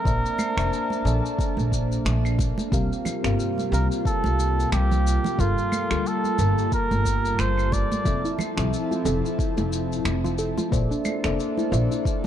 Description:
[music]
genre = sunset chillout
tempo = 90 BPM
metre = 4/4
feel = swing 57% on 16ths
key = F major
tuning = A4 = 436 Hz
[part]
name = trumpet with cup mute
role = melody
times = 0.0-8.4 s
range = F4 to D5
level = -28 LUFS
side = right 1 dB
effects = ping-pong delay
[part]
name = mellow FM electric piano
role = accompaniment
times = 0.0-12.3 s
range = F3 to A5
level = -30 LUFS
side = moving between left 4 dB and right 2 dB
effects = chorus, auto-pan, ping-pong delay
[part]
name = airy breathy pad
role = sustained chords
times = 0.0-12.3 s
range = C3 to A5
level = -30 LUFS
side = right 1 dB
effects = chorus
[part]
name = upright bass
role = bass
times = 0.1-12.3 s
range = F1 to D2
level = -24 LUFS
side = equal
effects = tube saturation
[part]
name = electronic kick drum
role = drums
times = 0.1-12.2 s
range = none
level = -26 LUFS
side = equal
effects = overdrive
[part]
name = shaker, claves and finger snaps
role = drums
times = 0.1-12.2 s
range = none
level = -35 LUFS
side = left 1 dB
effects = none
[part]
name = congas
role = percussion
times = 0.4-12.3 s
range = none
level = -32 LUFS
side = right 3 dB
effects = none
[part]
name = soft round pluck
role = arpeggios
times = 8.2-12.3 s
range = D4 to A4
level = -31 LUFS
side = left 2 dB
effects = chorus, vintage 12-bit sampler grit, ping-pong delay
[sound]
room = light reverb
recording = dark, warm production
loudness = -21 LUFS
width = side -10 dB against mid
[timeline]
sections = 0.0-12.3 A section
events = none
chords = 0.1 Bbmaj9#11; 2.7 C7sus4; 5.4 Gm9; 8.1 Fmaj7; 10.7 Bbmaj9#11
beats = | 0.05 0.72 1.39 2.05 | 2.72 3.39 4.05 4.72 | 5.39 6.05 6.72 7.39 | 8.05 8.72 9.39 10.05 | 10.72 11.39 12.05

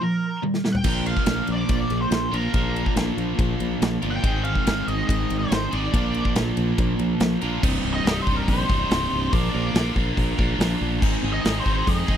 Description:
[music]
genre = classic rock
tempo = 142 BPM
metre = 4/4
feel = straight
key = unclear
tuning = A4 = 440 Hz
[part]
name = octave-fuzz lead guitar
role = melody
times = 0.0-12.2 s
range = Bb4 to G5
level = -29 LUFS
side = equal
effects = wah, distortion
[part]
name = distorted electric guitar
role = riff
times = 0.0-12.2 s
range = C2 to Bb4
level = -25 LUFS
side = right 1 dB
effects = distortion
[part]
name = big rock drum kit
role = drums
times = 0.4-12.2 s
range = crash cymbal, hi-hat, kick drum, ride cymbal, snare drum, toms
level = -24 LUFS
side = equal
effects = none
[part]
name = modern bright fingered electric bass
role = bass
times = 0.8-12.2 s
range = C1 to F2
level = -26 LUFS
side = equal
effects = none
[sound]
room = little or no reverb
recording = dry, close 1970s-style studio recording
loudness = -20 LUFS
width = side -9 dB against mid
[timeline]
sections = 0.8-7.6 A section; 7.6-12.2 B section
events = break 0.0-0.8; drum fill 0.4-0.8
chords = 0.0 Bb5; 0.8 Bb; 4.2 Ab; 5.9 Bb; 7.6 Cm; 9.3 Bb; 11.0 Ab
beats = 0.00 0.42 | 0.85 1.27 1.70 2.12 | 2.55 2.97 3.40 3.82 | 4.24 4.67 5.09 5.51 | 5.94 6.36 6.79 7.21 | 7.63 8.06 8.48 8.90 | 9.33 9.75 10.18 10.60 | 11.02 11.45 11.87

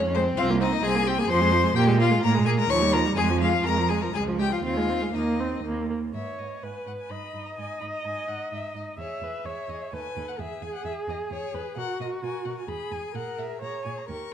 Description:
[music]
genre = quick classical-period movement for string quartet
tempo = 128 BPM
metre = 3/4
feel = rubato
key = Ab major, G# minor from 6.1 s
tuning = A4 = 440 Hz
[part]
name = warm violin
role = second line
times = 0.0-14.3 s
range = B3 to Db5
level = -31 LUFS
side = left 3 dB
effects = none
[part]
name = warm cello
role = bass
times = 0.0-14.2 s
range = C2 to B2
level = -28 LUFS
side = right 4 dB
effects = none
[part]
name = rich violin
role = melody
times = 0.1-14.3 s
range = B4 to Db6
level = -30 LUFS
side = left 7 dB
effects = none
[part]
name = warm viola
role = accompaniment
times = 0.2-14.3 s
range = F3 to E5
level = -29 LUFS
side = right 2 dB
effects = none
[sound]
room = moderate recital hall reverb, RT60 1.5 s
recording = dark, warm production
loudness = -23 LUFS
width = side -9 dB against mid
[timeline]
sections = 0.0-6.1 A section; 6.1-14.3 A section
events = none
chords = 0.4 Abmaj13/C; 1.3 Fm; 1.8 Fmadd11/Bb; 2.7 Eb9; 3.2 Fm; 4.1 Db; 4.6 Ab/Eb; 5.6 Eb5; 6.1 G#m; 7.1 D#/G; 7.6 G#5; 9.0 E; 9.9 B7; 10.4 E; 11.8 B5; 12.7 E; 13.2 A#m7b5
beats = | 0.38 0.84 1.30 | 1.77 2.24 2.71 | 3.18 3.65 4.14 | 4.64 5.14 5.64 | 6.14 6.62 7.10 | 7.57 8.05 8.52 | 8.99 9.46 9.93 | 10.39 10.86 11.32 | 11.78 12.23 12.69 | 13.15 13.62 14.09

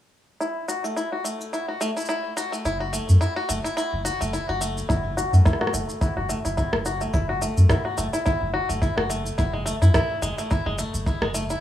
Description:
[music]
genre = folktronica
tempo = 107 BPM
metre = 4/4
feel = swing 56% on 16ths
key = F# minor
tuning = A4 = 441 Hz
[part]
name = bluegrass banjo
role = arpeggios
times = 0.4-11.6 s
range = G#3 to F#4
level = -26 LUFS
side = left 1 dB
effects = low-pass filter, digital delay
[part]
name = electronic shaker and rim click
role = drums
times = 0.4-11.6 s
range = none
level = -30 LUFS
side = equal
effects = overdrive
[part]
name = warm sub bass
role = bass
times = 2.6-11.6 s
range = F#1 to F#2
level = -23 LUFS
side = equal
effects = none
[part]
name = kick drum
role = drums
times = 4.9-11.2 s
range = none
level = -25 LUFS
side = equal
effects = none
[sound]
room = light reverb, small room ambience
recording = none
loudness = -21 LUFS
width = side -12 dB against mid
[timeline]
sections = 0.4-4.9 A section; 4.9-11.6 B section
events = filter sweep on five-string banjo 0.4-4.9, 4.9-11.6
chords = 0.4 F#m7; 9.4 A5/F#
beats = | 0.41 0.97 1.53 2.09 | 2.65 3.21 3.77 4.34 | 4.90 5.46 6.02 6.58 | 7.14 7.70 8.26 8.82 | 9.38 9.94 10.50 11.06

